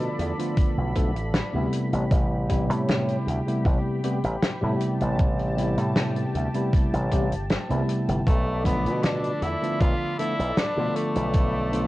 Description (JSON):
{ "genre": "vaporwave", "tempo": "78 BPM", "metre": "4/4", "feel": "straight", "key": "A minor", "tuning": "A4 = 440 Hz", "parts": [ { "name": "tine electric piano", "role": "accompaniment", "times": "0.0-11.9 s", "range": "C3 to A4", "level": "-27 LUFS", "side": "equal", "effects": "wide subtle chorus" }, { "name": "lush unison pad", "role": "sustained chords", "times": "0.0-11.9 s", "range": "G4 to B5", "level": "-35 LUFS", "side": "left 1 dB", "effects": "chorus" }, { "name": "slap bass with an envelope filter", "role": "bass", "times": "0.0-11.9 s", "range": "G1 to B2", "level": "-27 LUFS", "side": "equal", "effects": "none" }, { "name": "natural country drum kit", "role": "drums", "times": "0.0-11.9 s", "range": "hi-hat, snare drum", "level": "-29 LUFS", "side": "equal", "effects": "vintage 12-bit sampler grit" }, { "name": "electronic kick drum", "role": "drums", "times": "0.6-11.5 s", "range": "none", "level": "-22 LUFS", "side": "equal", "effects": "vintage 12-bit sampler grit" }, { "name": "clear tenor saxophone", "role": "melody", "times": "8.3-11.9 s", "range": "A3 to F4", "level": "-28 LUFS", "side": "equal", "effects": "tape echo" } ], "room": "light reverb, small room ambience", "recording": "worn, warbling old tape, cassette tape, warbly pitch drift", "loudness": "-22 LUFS", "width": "side -17 dB against mid", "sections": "0.0-11.9 A section", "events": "none", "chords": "0.0 Bm7b5; 1.7 Am9; 8.3 Bm7b5", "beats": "0.57 1.34 | 2.11 2.88 3.65 4.42 | 5.19 5.96 6.73 7.50 | 8.27 9.04 9.81 10.57 | 11.35" }